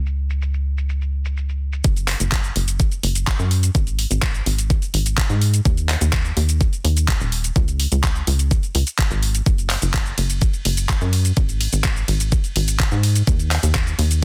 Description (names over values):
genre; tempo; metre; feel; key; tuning
progressive house; 126 BPM; 4/4; straight; unclear; A4 = 439 Hz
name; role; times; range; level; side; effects
tight sequencer bass; bass; 0.0-14.2 s; D#1 to G#2; -22 LUFS; equal; sidechain pumping
pop drum kit; drums; 0.1-14.2 s; handclaps, hi-hat, ride cymbal, shaker; -26 LUFS; equal; overdrive, low-pass filter on perc, low-pass filter on hats, low-pass filter on snare, low-pass filter on cymbals, low-pass filter on room
electronic kick drum; drums; 1.8-13.8 s; none; -22 LUFS; equal; overdrive
room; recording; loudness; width
little or no reverb; dense, heavily limited modern master; -20 LUFS; mono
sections
0.0-1.8 A section; 1.8-14.2 B section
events
drop 1.8-14.2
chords
none